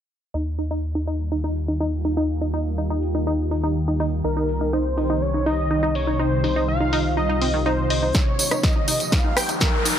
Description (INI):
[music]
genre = progressive house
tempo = 123 BPM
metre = 4/4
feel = straight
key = Eb mixolydian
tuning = A4 = 440 Hz
[part]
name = shimmering ambient pad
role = sustained chords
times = 1.2-10.0 s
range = C3 to G4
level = -28 LUFS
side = right 1 dB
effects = chorus, built-in reverb, phaser, sidechain pumping
[part]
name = wide unison pluck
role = arpeggios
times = 0.3-9.9 s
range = Eb3 to Eb5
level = -25 LUFS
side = equal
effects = sidechain pumping, digital delay
[part]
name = round analog bass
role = bass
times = 0.3-9.9 s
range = C2 to Eb2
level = -26 LUFS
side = equal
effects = sidechain pumping, high-pass filter
[part]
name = house drum kit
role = drums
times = 0.6-10.0 s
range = hi-hat, rim click, snare drum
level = -26 LUFS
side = equal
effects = low-pass filter on hats, low-pass filter on snare
[part]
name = wide unison lead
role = melody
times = 4.2-10.0 s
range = Bb4 to G5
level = -25 LUFS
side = equal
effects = digital delay
[part]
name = electronic kick drum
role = drums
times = 8.1-9.7 s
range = none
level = -21 LUFS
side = equal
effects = none
[part]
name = tambourine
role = percussion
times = 8.1-10.0 s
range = none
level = -26 LUFS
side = right 3 dB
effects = none
[part]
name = riser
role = sound effects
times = 8.8-10.0 s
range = none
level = -29 LUFS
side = left 2 dB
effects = none
[sound]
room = light reverb, digital ambience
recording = low-pass filter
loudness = -20 LUFS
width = side -9 dB against mid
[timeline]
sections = 0.3-8.1 A section; 8.1-10.0 B section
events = filter sweep on synth pluck 0.3-8.1, 8.1-10.0; filter sweep on ambient pad 0.3-8.1; filter sweep 0.3-8.1; build-up 8.1-10.0; drum fill 8.1-10.0; riser 8.8-10.0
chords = 0.3 Ebadd9; 4.2 Cm; 8.1 Ebadd9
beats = | 0.34 0.83 1.32 1.81 | 2.29 2.78 3.27 3.76 | 4.25 4.73 5.22 5.71 | 6.20 6.68 7.17 7.66 | 8.15 8.63 9.12 9.61